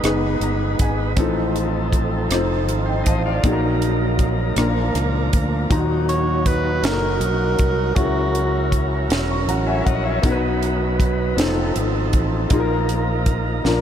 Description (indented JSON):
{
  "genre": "slow gospel",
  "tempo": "53 BPM (dotted quarters)",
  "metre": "6/8",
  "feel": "straight",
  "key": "Eb minor",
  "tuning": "A4 = 440 Hz",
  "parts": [
    { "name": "warm upright piano", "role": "accompaniment", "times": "0.0-13.8 s", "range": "Ab2 to Db6", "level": "-23 LUFS", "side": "left 2 dB", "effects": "wide subtle chorus" },
    { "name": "tonewheel organ", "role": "sustained chords", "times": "0.0-13.8 s", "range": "F3 to Gb5", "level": "-24 LUFS", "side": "right 2 dB", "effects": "slow rotary speaker, overdrive" },
    { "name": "fingered electric bass", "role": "bass", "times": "0.0-13.8 s", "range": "Fb1 to Eb2", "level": "-23 LUFS", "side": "equal", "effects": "none" },
    { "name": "tight funk drum kit", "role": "drums", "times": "0.0-13.8 s", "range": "hi-hat, kick drum, rim click, snare drum", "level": "-23 LUFS", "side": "equal", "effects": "none" },
    { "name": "breathy tenor saxophone", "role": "melody", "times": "6.1-8.8 s", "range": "Gb4 to Db5", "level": "-27 LUFS", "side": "right 2 dB", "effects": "tape echo" }
  ],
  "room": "moderate huge ambient reverb, RT60 7.2 s",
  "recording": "dreamy mix soaked in reverb",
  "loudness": "-17 LUFS",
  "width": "side -9 dB against mid",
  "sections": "0.0-13.8 A section",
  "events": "upright piano fill 0.0-1.2, 9.1-10.2; drum fill 13.6",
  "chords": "0.0 Abm; 1.2 F7/A; 3.4 Ebm/Bb; 4.6 Bb; 5.7 Ebm; 8.0 Gb7/Db; 10.2 B; 11.4 F7; 12.5 Bbsus4",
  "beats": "0.04 | 1.17 2.30 | 3.44 4.57 | 5.70 6.84 | 7.97 9.11 | 10.24 11.37 | 12.51 13.64"
}